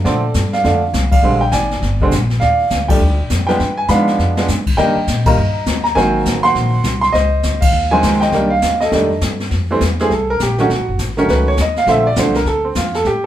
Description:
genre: jazz piano trio.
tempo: 203 BPM.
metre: 4/4.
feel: swing 63% on 8ths.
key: Bb major.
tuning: A4 = 440 Hz.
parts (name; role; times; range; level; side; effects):
clear baby grand piano; melody; 0.0-13.3 s; D3 to C6; -15 LUFS; right 1 dB; none.
upright bass; bass; 0.0-13.3 s; F#1 to C3; -18 LUFS; equal; none.
jazz brush drum kit; drums; 0.0-13.3 s; brushed snare drum, crash cymbal, hi-hat, kick drum, snare drum; -20 LUFS; left 2 dB; none.
room: wet studio reverb, RT60 0.6 s.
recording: band playing live in one room.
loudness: -13 LUFS.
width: side -12 dB against mid.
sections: 0.0-9.5 A section; 9.5-13.3 B section.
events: band accent 1.1, 2.9, 5.2, 7.6; drum fill 4.2; grand piano solo 9.5-13.3.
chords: 0.0 Bbmaj9; 1.2 Bb13; 2.4 Ebmaj9; 3.6 G7b9; 4.8 Cm7; 6.0 Ab7; 7.1 Dbmaj9; 8.3 Cm7; 8.9 F13; 9.5 Fmaj9; 10.7 B9 (rootless); 11.9 Bbmaj9.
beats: | 0.05 0.34 0.64 0.93 | 1.23 1.52 1.82 2.11 | 2.41 2.70 3.00 3.29 | 3.59 3.89 4.18 4.48 | 4.77 5.07 5.37 5.66 | 5.96 6.25 6.55 6.84 | 7.14 7.44 7.73 8.03 | 8.32 8.62 8.91 9.21 | 9.51 9.80 10.10 10.39 | 10.69 10.98 11.28 11.57 | 11.87 12.16 12.46 12.76 | 13.05.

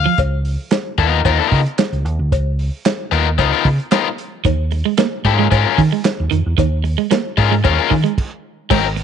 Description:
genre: funk.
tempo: 113 BPM.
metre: 4/4.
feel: straight.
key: unclear.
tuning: A4 = 440 Hz.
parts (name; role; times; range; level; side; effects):
overdriven electric guitar; accompaniment; 0.0-8.9 s; Gb3 to F5; -17 LUFS; left 11 dB; none.
hollow-body short-scale fingered electric bass; bass; 0.0-9.0 s; Ab1 to Eb3; -17 LUFS; right 1 dB; none.
electric guitar at the edge of break-up; riff; 0.1, 4.4-9.0 s; Eb3 to Bb3; -21 LUFS; right 15 dB; none.
warm soul drum kit; drums; 0.2-9.0 s; crash cymbal, handclaps, hi-hat, kick drum, snare drum; -19 LUFS; right 4 dB; none.
cowbell; percussion; 0.2-8.8 s; none; -25 LUFS; left 10 dB; none.
room: light reverb.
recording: 1960s-style stereo with parts hard left and right, nothing above 10.4 kHz.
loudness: -14 LUFS.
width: side -8 dB against mid.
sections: 0.2-8.7 A section.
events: stop 8.2-8.7.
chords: 0.2 Db13; 4.5 Eb9sus4.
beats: | 0.19 0.72 1.26 1.79 | 2.32 2.85 3.39 3.92 | 4.45 4.98 5.52 6.05 | 6.58 7.11 7.64 8.17 | 8.71.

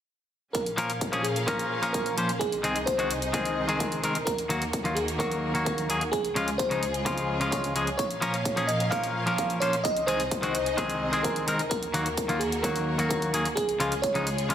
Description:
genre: EDM, festival progressive house.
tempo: 129 BPM.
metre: 4/4.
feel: straight.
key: unclear.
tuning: A4 = 440 Hz.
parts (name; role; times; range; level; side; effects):
bell-like FM electric piano; melody; 0.5-14.5 s; Ab4 to F5; -30 LUFS; equal; chorus, phaser, digital delay.
bright studio string section; sustained chords; 0.5-14.5 s; C2 to F5; -33 LUFS; equal; sidechain pumping.
electronic hi-hat; drums; 0.5-14.5 s; none; -35 LUFS; right 1 dB; studio reverb.
electronic kick drum; drums; 0.5-14.1 s; none; -34 LUFS; equal; high-pass filter on kick, studio reverb, high-pass filter on room.
semi-hollow electric guitar; accompaniment; 0.8-14.5 s; Db3 to C5; -28 LUFS; left 1 dB; sidechain pumping.
room: moderate lush hall reverb, RT60 2.0 s.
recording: none.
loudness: -25 LUFS.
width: side -10 dB against mid.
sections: 0.5-14.5 A section.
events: none.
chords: 0.5 Bbm; 2.4 Ab/C; 4.3 Ebm; 6.1 Db; 8.0 Bbm; 9.8 Ab/C; 11.7 Ebm; 13.6 Db.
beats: | 0.55 1.01 1.48 1.94 | 2.41 2.87 3.34 3.80 | 4.27 4.73 5.20 5.66 | 6.13 6.59 7.06 7.52 | 7.99 8.45 8.92 9.38 | 9.85 10.31 10.78 11.24 | 11.71 12.18 12.64 13.11 | 13.57 14.04 14.50.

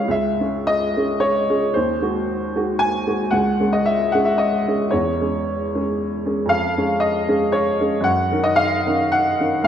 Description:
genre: classical, romantic character piece for solo piano.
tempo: 113 BPM.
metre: 3/4.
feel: rubato.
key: C# minor.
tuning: A4 = 440 Hz.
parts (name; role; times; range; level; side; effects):
clear upright piano; solo; 0.0-9.7 s; Ab1 to G#5; -17 LUFS; equal; none.
room: wet concert hall reverb, RT60 1.9 s.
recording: dark, warm production.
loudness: -17 LUFS.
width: side -9 dB against mid.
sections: 0.1-9.7 A section.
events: none.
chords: 0.1 C#m; 1.7 G#7/D#; 3.3 C#5; 4.9 C#m/E; 6.5 Db/F; 8.1 Ebm7/Gb.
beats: | 0.11 0.67 1.21 | 1.75 2.28 2.81 | 3.34 3.88 4.41 | 4.94 5.47 6.00 | 6.51 7.03 7.55 | 8.07 8.60 9.13 | 9.66.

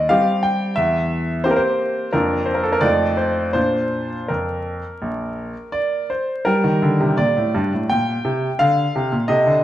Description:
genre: classical-period piano sonatina.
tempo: 85 BPM.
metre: 4/4.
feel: uneven beats, rubato.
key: Bb major, G minor from 6.5 s.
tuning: A4 = 440 Hz.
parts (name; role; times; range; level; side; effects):
bright baby grand piano; solo; 0.0-9.6 s; Bb1 to G5; -17 LUFS; equal; none.
room: wet recital hall reverb, RT60 1.4 s.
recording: vinyl crackle.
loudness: -17 LUFS.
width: side -13 dB against mid.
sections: 0.0-6.5 A section; 6.5-9.6 B section.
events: none.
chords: 0.0 Cm/Eb; 0.8 C7/E; 2.1 Bb/F; 2.8 F7; 3.6 Bb; 6.5 Gm.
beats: 0.11 | 0.78 1.45 2.14 2.84 | 3.56 4.30 5.03 5.74 | 6.47 7.17 7.89 8.59 | 9.28.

